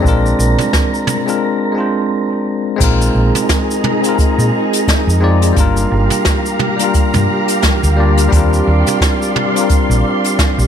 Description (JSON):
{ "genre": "sunset chillout", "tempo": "87 BPM", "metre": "4/4", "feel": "swing 57% on 16ths", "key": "unclear", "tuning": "A4 = 440 Hz", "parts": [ { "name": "bell-like tine electric piano", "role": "accompaniment", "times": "0.0-10.7 s", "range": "G3 to D5", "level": "-16 LUFS", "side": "moving between left 7 dB and right 4 dB", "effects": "auto-pan, tape echo" }, { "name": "hollow-body short-scale fingered electric bass", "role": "bass", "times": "0.0-10.7 s", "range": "G1 to Bb2", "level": "-13 LUFS", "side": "equal", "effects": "none" }, { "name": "electronic kick drum", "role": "drums", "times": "0.0-10.6 s", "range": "none", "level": "-15 LUFS", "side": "right 1 dB", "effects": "overdrive" }, { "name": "wind-like tuned noise texture", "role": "texture", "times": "0.0-1.4 s", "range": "Bb4 to Bb5", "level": "-25 LUFS", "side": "right 2 dB", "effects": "built-in reverb" }, { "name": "jazz brush drum kit", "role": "drums", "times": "0.1-10.7 s", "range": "crash cymbal, hi-hat, shaker, snare drum, toms", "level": "-19 LUFS", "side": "equal", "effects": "none" }, { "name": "soft string machine", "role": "sustained chords", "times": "2.8-10.7 s", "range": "Eb4 to C6", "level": "-19 LUFS", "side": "equal", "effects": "ensemble chorus" } ], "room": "light reverb, small room ambience", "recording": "none", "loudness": "-11 LUFS", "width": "side -8 dB against mid", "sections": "0.0-2.8 A section; 2.8-10.7 B section", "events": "break 1.4-2.8", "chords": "0.0 Bb7; 2.8 Bb7sus4; 5.6 Gm7; 8.3 Ebmaj13" }